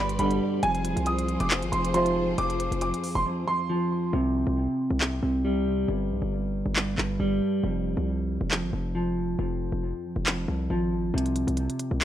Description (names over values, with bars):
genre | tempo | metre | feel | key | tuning
hip hop, trap | 137 BPM | 4/4 | half-time | unclear | A4 = 440 Hz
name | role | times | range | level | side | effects
clear grand piano | melody | 0.0-4.1 s | Ab5 to Eb6 | -29 LUFS | right 2 dB | analog delay
mellow electric guitar | accompaniment | 0.0-12.0 s | F2 to G3 | -27 LUFS | right 1 dB | analog delay
warm studio string section | sustained chords | 0.0-4.1 s | F3 to D5 | -34 LUFS | left 3 dB | none
hard-hitting 808-style bass | bass | 0.0-12.0 s | F1 to C2 | -30 LUFS | equal | none
trap drum kit | drums | 0.1-12.0 s | handclaps, hi-hat | -28 LUFS | equal | none
dark brass ensemble | stabs | 0.2-2.4 s | G2 to F3 | -28 LUFS | right 2 dB | none
room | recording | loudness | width
light reverb, small room ambience | echo-heavy mix | -24 LUFS | side -11 dB against mid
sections
0.0-4.1 A section; 4.1-12.0 B section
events
drums muted 3.3-4.1; hi-hats muted 4.1-11.1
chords
0.0 G; 0.6 Fm; 4.1 C5; 5.9 N.C.; 7.6 Fm; 11.1 C5